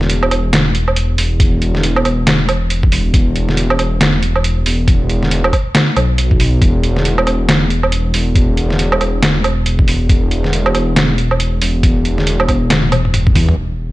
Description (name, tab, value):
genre	deep dubstep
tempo	138 BPM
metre	4/4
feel	swing 60% on 16ths, half-time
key	unclear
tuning	A4 = 435 Hz
part	dark detuned saw bass	bass	0.0-13.9 s	E1 to E2	-15 LUFS	equal	none
part	trip hop sampler-style drum kit	drums	0.0-13.6 s	hi-hat, snare drum, toms, woodblock	-15 LUFS	right 1 dB	overdrive, low-pass filter on hats, low-pass filter on snare, low-pass filter on perc, low-pass filter on toms
part	electronic kick drum	drums	1.4-13.5 s	none	-13 LUFS	equal	overdrive
room	digital ambience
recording	nothing above 10.4 kHz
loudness	-12 LUFS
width	side -18 dB against mid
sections	0.0-13.6 A section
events	drum fill 12.7-13.6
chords	none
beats	0.10 0.53 0.96 | 1.40 1.83 2.27 2.70 | 3.14 3.57 4.01 4.44 | 4.88 5.31 5.75 6.18 | 6.62 7.05 7.49 7.92 | 8.36 8.79 9.22 9.66 | 10.10 10.53 10.96 11.40 | 11.83 12.27 12.70 13.14 | 13.57